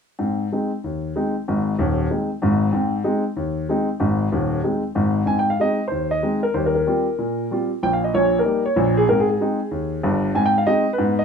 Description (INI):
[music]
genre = jazz, stride piano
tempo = 189 BPM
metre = 4/4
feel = swing 65% on 8ths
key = Ab major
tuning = A4 = 440 Hz
[part]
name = warm grand piano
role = solo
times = 0.2-11.2 s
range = Eb1 to Ab5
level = -18 LUFS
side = equal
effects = none
[sound]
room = moderate studio reverb, RT60 0.5 s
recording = minimal, uncompressed stereo recording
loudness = -18 LUFS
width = side -6 dB against mid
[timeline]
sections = 0.2-5.3 A section; 5.3-11.2 B section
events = none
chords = 0.2 Ab; 6.6 Eb69; 7.8 Eb7/Bb; 9.1 Ab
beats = | 0.21 0.53 0.84 1.16 | 1.48 1.79 2.11 2.43 | 2.75 3.06 3.38 3.70 | 4.02 4.33 4.65 4.97 | 5.29 5.60 5.92 6.24 | 6.55 6.87 7.19 7.50 | 7.82 8.14 8.46 8.77 | 9.09 9.41 9.72 10.04 | 10.36 10.67 10.99